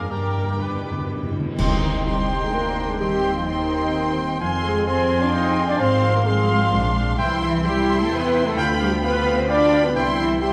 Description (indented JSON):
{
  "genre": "classical, dramatic, fast romantic movement for symphony orchestra",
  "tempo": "129 BPM",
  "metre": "3/4",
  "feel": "straight",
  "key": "C minor, C major from 7.2 s",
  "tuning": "A4 = 443 Hz",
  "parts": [
    { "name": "warm symphonic violin section", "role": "melody", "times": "0.0-10.5 s", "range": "G5 to C6", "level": "-33 LUFS", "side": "equal", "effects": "none" },
    { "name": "silver concert flute", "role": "second line", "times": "0.0-10.5 s", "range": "B5 to D6", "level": "-33 LUFS", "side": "equal", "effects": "none" },
    { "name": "warm clarinet", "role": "second line", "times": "0.0-10.5 s", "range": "G4 to F5", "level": "-36 LUFS", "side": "equal", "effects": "none" },
    { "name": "warm cor anglais", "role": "second line", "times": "0.0-10.5 s", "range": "D5 to Ab5", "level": "-37 LUFS", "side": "equal", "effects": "none" },
    { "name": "warm studio viola section", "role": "accompaniment", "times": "0.0-10.5 s", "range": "C4 to B4", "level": "-32 LUFS", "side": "equal", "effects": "none" },
    { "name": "mellow French horn section", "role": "sustained chords", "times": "0.0-10.5 s", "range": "G3 to Eb5", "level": "-27 LUFS", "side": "equal", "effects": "none" },
    { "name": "concert harp", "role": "arpeggios", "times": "0.0-10.5 s", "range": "G2 to D5", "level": "-34 LUFS", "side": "equal", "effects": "none" },
    { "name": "clear trumpet", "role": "stabs", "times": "0.0-10.1 s", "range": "Bb4 to Ab5", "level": "-33 LUFS", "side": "equal", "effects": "none" },
    { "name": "rich symphonic double bass section", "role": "bass", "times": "0.0-10.5 s", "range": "Ab1 to G2", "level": "-28 LUFS", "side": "equal", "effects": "none" },
    { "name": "warm symphonic cello section", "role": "bass", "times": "0.0-10.5 s", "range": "Eb3 to Eb4", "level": "-29 LUFS", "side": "equal", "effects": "none" },
    { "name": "warm symphonic violin section", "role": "second line", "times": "0.1-10.5 s", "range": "G4 to Ab5", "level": "-36 LUFS", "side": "equal", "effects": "none" },
    { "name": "timpani", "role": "percussion", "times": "0.1-2.3 s", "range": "G2 to C3", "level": "-31 LUFS", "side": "equal", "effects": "none" },
    { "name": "mellow trombone section", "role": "sustained chords", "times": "1.6-10.1 s", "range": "C3 to F4", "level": "-36 LUFS", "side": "equal", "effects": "none" },
    { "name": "clash cymbals and concert bass drum", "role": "percussion", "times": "1.6-2.5 s", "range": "none", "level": "-32 LUFS", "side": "equal", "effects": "none" }
  ],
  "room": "moderate scoring stage reverb, RT60 2.0 s",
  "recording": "vinyl crackle",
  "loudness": "-21 LUFS",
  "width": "mono",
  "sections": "0.0-1.6 A section; 1.6-10.5 B section",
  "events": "timpani fill 0.1-1.6; band accent 1.6-2.1",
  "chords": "0.1 G; 1.6 Cm; 3.0 Cm/Eb; 4.4 Fm; 5.8 Fm/Ab; 7.2 C; 8.6 G7/D; 10.0 C"
}